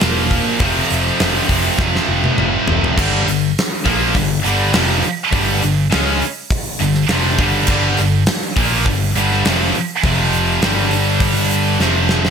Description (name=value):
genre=hard rock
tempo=102 BPM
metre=4/4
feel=straight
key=G minor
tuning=A4 = 440 Hz
part: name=distorted electric guitar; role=riff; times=0.0-12.3 s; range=F2 to D4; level=-22 LUFS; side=equal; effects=overdrive
part: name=heavy high-gain guitar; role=riff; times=0.0-12.3 s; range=F2 to C#4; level=-19 LUFS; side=right 11 dB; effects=distortion
part: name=scooped high-gain guitar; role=riff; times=0.0-12.3 s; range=F2 to C#4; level=-20 LUFS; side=left 9 dB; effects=distortion
part: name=picked electric bass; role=bass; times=0.0-12.3 s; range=E1 to C#2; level=-20 LUFS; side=equal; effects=none
part: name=gated 80s drum kit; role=drums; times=0.0-12.3 s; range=crash cymbal, hi-hat, kick drum, snare drum, toms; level=-19 LUFS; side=equal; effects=none
room=light reverb, studio ambience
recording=none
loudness=-13 LUFS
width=side -7 dB against mid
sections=0.0-3.0 A section; 3.0-12.3 B section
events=drum fill 1.8-3.0, 11.8-12.3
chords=0.0 Bb; 0.6 F; 3.0 Gm; 10.0 F5; 10.6 G5